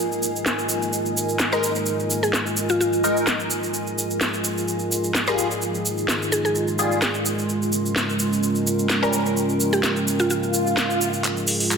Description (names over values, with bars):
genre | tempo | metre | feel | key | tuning
bass house | 128 BPM | 4/4 | swing 54% on 16ths | F minor | A4 = 440 Hz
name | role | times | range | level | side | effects
mallet-like synth pluck | melody | 0.0-10.4 s | F4 to Bb4 | -26 LUFS | left 1 dB | chorus, vintage 12-bit sampler grit, digital delay
dark analog pad | sustained chords | 0.0-11.8 s | Ab3 to Bb4 | -26 LUFS | right 1 dB | chorus
granular cloud pad | texture | 0.0-11.8 s | F4 to Ab5 | -27 LUFS | right 1 dB | built-in reverb
tube shaker | percussion | 0.1-11.8 s | none | -28 LUFS | right 2 dB | none
garage drum kit | drums | 0.5-11.8 s | handclaps, hi-hat, snare drum | -26 LUFS | equal | low-pass filter on hats, low-pass filter on snare
band-passed chord stab | stabs | 1.5-9.2 s | G3 to Bb4 | -27 LUFS | left 3 dB | phaser, analog chorus, digital delay
swell and riser | sound effects | 10.4-11.8 s | none | -26 LUFS | right 1 dB | none
room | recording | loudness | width
moderate lush hall reverb, RT60 1.8 s, digital ambience | dense, heavily limited modern master | -20 LUFS | side -6 dB against mid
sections
0.0-11.2 A section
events
swell 10.4-11.2; drum fill 11.2-11.8; riser 11.2-11.8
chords
0.0 Ebsus4; 3.7 Fm; 7.5 Gdim; 11.2 Fm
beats
0.46 0.93 1.40 | 1.87 2.34 2.81 3.27 | 3.74 4.21 4.68 5.15 | 5.62 6.09 6.55 7.02 | 7.49 7.96 8.43 8.90 | 9.37 9.84 10.30 10.77 | 11.24 11.71